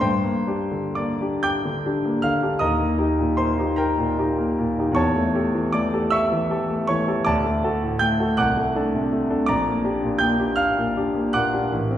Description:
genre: classical, romantic character piece for solo piano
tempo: 40-56 BPM (dotted quarters)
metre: 6/8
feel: rubato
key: G minor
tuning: A4 = 440 Hz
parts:
  - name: bright concert grand piano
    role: solo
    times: 0.0-12.0 s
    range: A1 to G6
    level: -20 LUFS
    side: equal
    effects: none
room: wet recital hall reverb, RT60 1.8 s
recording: heard from further back in the room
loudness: -20 LUFS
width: side -11 dB against mid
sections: 0.0-12.0 A section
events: none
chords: 0.0 Gm; 2.6 Eb; 5.0 A7/E; 7.2 D; 8.4 D7/C; 9.5 Gm/Bb

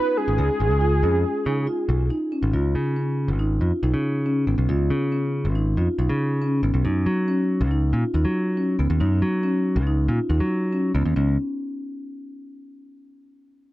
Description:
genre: progressive instrumental, band music in an uneven meter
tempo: 139 BPM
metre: 5/4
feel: straight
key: Db mixolydian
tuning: A4 = 441 Hz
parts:
  - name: wide unison lead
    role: melody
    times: 0.0-2.1 s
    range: Ab4 to Cb5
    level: -24 LUFS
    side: right 1 dB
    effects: digital delay
  - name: marimba with soft mallets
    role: arpeggios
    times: 0.0-11.4 s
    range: Cb4 to Ab4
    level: -26 LUFS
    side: equal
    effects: none
  - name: modern bright picked electric bass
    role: bass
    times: 0.3-11.4 s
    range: Ab1 to Gb3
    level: -21 LUFS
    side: equal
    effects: none
room: moderate studio ambience, RT60 0.5 s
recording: dark, warm production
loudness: -20 LUFS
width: side -16 dB against mid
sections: 0.0-2.5 A section; 2.5-11.2 B section; 11.2-13.3 C section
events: none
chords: 0.0 Dbadd9; 2.5 Db9; 6.8 Gb5; 11.2 N.C.

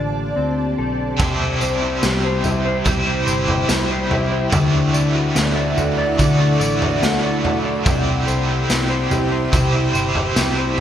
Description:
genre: dream pop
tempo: 72 BPM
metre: 4/4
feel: straight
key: C lydian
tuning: A4 = 435 Hz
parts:
  - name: ethereal airy pad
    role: sustained chords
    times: 0.0-10.8 s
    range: E4 to A5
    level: -24 LUFS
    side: right 2 dB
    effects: ensemble chorus, built-in reverb
  - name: mellow electric guitar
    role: arpeggios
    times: 0.0-10.8 s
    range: C3 to D5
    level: -20 LUFS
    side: left 2 dB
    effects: lush chorus, digital delay
  - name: vintage muted picked electric bass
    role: bass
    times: 0.0-10.7 s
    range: G1 to D2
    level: -26 LUFS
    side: right 1 dB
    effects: none
  - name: biting overdriven guitar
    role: accompaniment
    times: 1.2-10.8 s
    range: C3 to D5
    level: -23 LUFS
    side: right 2 dB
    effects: tremolo, lush chorus
  - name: raw garage drum kit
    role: drums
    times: 1.2-10.8 s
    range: crash cymbal, kick drum, snare drum, tambourine, toms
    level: -22 LUFS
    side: right 1 dB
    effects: gated reverb
room: wet plate reverb, RT60 2.6 s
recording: bright 1980s-style digital production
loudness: -16 LUFS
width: side -10 dB against mid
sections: 0.0-1.2 A section; 1.2-10.8 B section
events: none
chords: 0.0 D7sus4; 1.2 C; 4.5 Dadd9; 7.9 C

